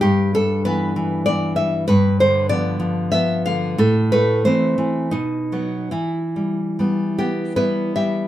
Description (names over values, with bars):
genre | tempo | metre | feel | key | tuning
romantic piece for solo classical guitar | 69-98 BPM | 3/4 | rubato | E minor | A4 = 440 Hz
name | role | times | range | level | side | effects
nylon-string guitar | solo | 0.0-8.3 s | G2 to F5 | -17 LUFS | equal | none
room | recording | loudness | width
light reverb | minimal, uncompressed stereo recording | -17 LUFS | side -13 dB against mid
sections
0.0-8.3 A section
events
none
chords
0.0 Em/G; 1.9 G7; 3.8 Am; 5.1 B; 5.9 Em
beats
| 0.01 0.64 1.26 | 1.88 2.50 3.13 | 3.79 4.43 5.12 | 5.92 6.77 7.58